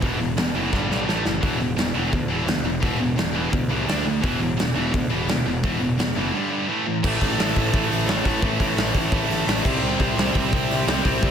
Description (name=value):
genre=heavy metal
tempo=171 BPM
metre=4/4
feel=straight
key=E minor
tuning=A4 = 440 Hz
part: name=heavy high-gain guitar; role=riff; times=0.0-11.3 s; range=E2 to D4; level=-25 LUFS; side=right 10 dB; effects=distortion
part: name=scooped high-gain guitar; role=riff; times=0.0-11.3 s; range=E2 to D4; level=-26 LUFS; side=left 10 dB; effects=distortion
part: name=fuzz picked electric bass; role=bass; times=0.0-11.3 s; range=E1 to D2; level=-28 LUFS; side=equal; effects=overdrive
part: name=big rock drum kit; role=drums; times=0.0-11.3 s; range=crash cymbal, hi-hat, kick drum, snare drum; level=-24 LUFS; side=equal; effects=none
part: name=warm studio string section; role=sustained chords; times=7.0-11.3 s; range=G3 to E5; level=-32 LUFS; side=left 2 dB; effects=none
room=studio reverb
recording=none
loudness=-20 LUFS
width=side -8 dB against mid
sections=0.0-7.0 A section; 7.0-11.3 B section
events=drum fill 0.7-1.4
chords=0.0 E5; 0.7 G5; 1.1 A5; 1.4 E5; 3.9 D5; 4.2 E5; 6.3 G5; 6.7 A5; 7.0 A; 9.6 C